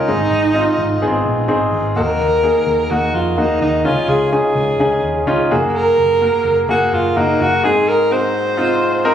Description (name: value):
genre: pop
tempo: 127 BPM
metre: 4/4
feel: straight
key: unclear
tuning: A4 = 440 Hz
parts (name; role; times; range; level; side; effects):
- clear alto saxophone; melody; 0.0-9.1 s; Eb4 to C5; -16 LUFS; right 1 dB; none
- clear concert grand piano; accompaniment; 0.0-9.1 s; Ab2 to Bb4; -17 LUFS; left 1 dB; none
- vintage muted fingered electric bass; bass; 0.0-7.6 s; Gb1 to F2; -23 LUFS; equal; none
room: moderate large studio reverb, RT60 1.3 s, studio ambience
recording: recorded on a phone in the room, club reverb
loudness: -13 LUFS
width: side -9 dB against mid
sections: 0.0-2.0 A section; 2.0-9.1 B section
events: none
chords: 0.1 Ab; 2.0 Ebm; 3.9 Dbadd9; 5.5 Gbadd9; 7.6 Ab